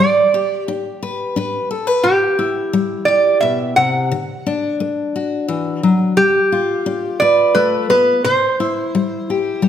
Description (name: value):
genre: country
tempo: 87 BPM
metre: 3/4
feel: straight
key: C major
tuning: A4 = 440 Hz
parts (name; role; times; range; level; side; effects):
- lap resonator guitar; melody; 0.0-9.7 s; G4 to F#5; -15 LUFS; right 2 dB; none
- picked steel-string acoustic guitar; accompaniment; 0.0-9.7 s; B2 to B4; -18 LUFS; left 4 dB; none
room: moderate recital hall reverb, RT60 1.5 s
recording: none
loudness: -14 LUFS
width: side -9 dB against mid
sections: 0.0-9.7 A section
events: none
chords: 0.0 G; 2.0 C; 4.1 D; 6.2 G7; 8.2 C